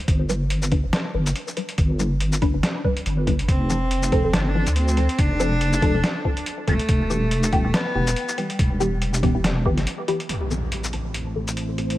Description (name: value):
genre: deep dubstep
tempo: 141 BPM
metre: 4/4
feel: swing 56% on 16ths, half-time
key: A minor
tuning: A4 = 440 Hz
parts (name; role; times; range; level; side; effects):
- deep soft wobble bass; bass; 0.1-9.9 s; E1 to D2; -22 LUFS; equal; chorus
- electronic kick drum; drums; 0.1-9.8 s; none; -22 LUFS; equal; none
- trip hop sampler-style drum kit; drums; 0.1-12.0 s; hi-hat, shaker, snare drum; -27 LUFS; equal; none
- filtered dub chord stab; stabs; 0.3-11.9 s; E3 to B4; -28 LUFS; left 2 dB; phaser, analog chorus, dub echo
- warm cello; melody; 3.5-9.9 s; G3 to D4; -26 LUFS; equal; dub echo
- deep dark ambient pad; sustained chords; 10.9-12.0 s; A3 to C5; -28 LUFS; equal; chorus, built-in reverb
- impact; sound effects; 10.3-12.0 s; none; -29 LUFS; equal; none
room: digital ambience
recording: vinyl crackle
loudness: -20 LUFS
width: side -15 dB against mid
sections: 0.0-10.3 A section; 10.3-12.0 B section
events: filter sweep on synth stab 0.0-10.3; break 9.9-10.3; impact 10.3-12.0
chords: 0.1 G; 3.5 F; 6.9 Em; 10.3 Am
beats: | 0.08 0.51 0.93 1.36 | 1.78 2.21 2.63 3.06 | 3.48 3.91 4.33 4.76 | 5.19 5.61 6.04 6.46 | 6.89 7.31 7.74 8.16 | 8.59 9.02 9.44 9.87 | 10.29 10.72 11.14 11.57